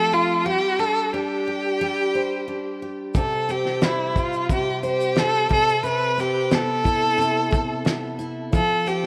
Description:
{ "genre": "acoustic pop", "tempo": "89 BPM", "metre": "4/4", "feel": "straight", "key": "C major", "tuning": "A4 = 436 Hz", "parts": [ { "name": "warm violin", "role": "melody", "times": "0.0-9.1 s", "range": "E4 to B4", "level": "-24 LUFS", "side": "equal", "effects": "digital delay" }, { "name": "picked steel-string acoustic guitar", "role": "accompaniment", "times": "0.0-9.1 s", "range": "C3 to C5", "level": "-29 LUFS", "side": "equal", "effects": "none" }, { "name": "cloth-damped thuddy drum kit", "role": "drums", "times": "3.1-9.1 s", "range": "kick drum, shaker, snare drum", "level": "-26 LUFS", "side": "equal", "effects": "none" } ], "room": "light reverb, small room ambience", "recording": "rough home demo mix", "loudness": "-22 LUFS", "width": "mono", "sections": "0.0-9.1 A section", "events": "none", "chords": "0.5 Gsus4; 3.2 C5; 5.5 Amadd9/C; 8.5 F", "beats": "| 0.47 1.14 1.81 2.48 | 3.15 3.82 4.50 5.17 | 5.84 6.51 7.18 7.86 | 8.53" }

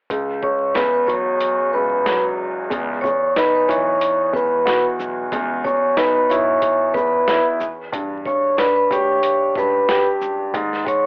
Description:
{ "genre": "hip hop, boom-bap hip-hop", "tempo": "92 BPM", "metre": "4/4", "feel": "swing 59% on 16ths", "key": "unclear", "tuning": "A4 = 440 Hz", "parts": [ { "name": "dark concert grand piano", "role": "accompaniment", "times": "0.1-11.1 s", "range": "C#2 to G4", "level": "-25 LUFS", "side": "equal", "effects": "high-pass filter, low-pass filter, cassette tape" }, { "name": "boom bap sampler-style drum kit", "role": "drums", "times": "0.1-11.1 s", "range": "hi-hat, kick drum, shaker, snare drum", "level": "-28 LUFS", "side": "equal", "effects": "cassette tape" }, { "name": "vibraphone with medium hard mallets", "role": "melody", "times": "0.4-11.1 s", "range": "B4 to C#6", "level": "-20 LUFS", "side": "equal", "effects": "high-pass filter, low-pass filter, cassette tape" }, { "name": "upright bass", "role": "bass", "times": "2.7-10.9 s", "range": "B1 to E2", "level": "-38 LUFS", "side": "equal", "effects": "none" } ], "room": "little or no reverb", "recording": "home recording on cassette, vinyl crackle, telephone sound", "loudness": "-19 LUFS", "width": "mono", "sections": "0.1-2.7 A section; 2.7-11.1 B section", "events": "kick muted 1.4-2.7", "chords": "0.1 C#m7; 2.7 C#m11; 7.6 Em7; 10.5 D#7sus4", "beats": "| 0.10 0.76 1.41 2.06 | 2.71 3.36 4.02 4.67 | 5.32 5.97 6.62 7.28 | 7.93 8.58 9.23 9.89 | 10.54" }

